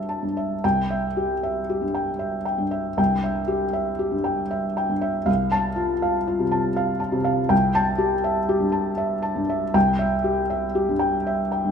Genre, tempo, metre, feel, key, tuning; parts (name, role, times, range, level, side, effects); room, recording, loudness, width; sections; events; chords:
neoclassical minimalist piano; 79 BPM; 3/4; rubato; C major; A4 = 439 Hz
felt-muted upright piano; solo; 0.0-11.7 s; C2 to A5; -20 LUFS; equal
moderate concert hall reverb, RT60 2.2 s; minimal, uncompressed stereo recording; -20 LUFS; side -7 dB against mid
0.6-11.7 A section
0.0 Am7/C; 0.6 C; 5.3 F/C; 7.5 Am7/C; 9.8 C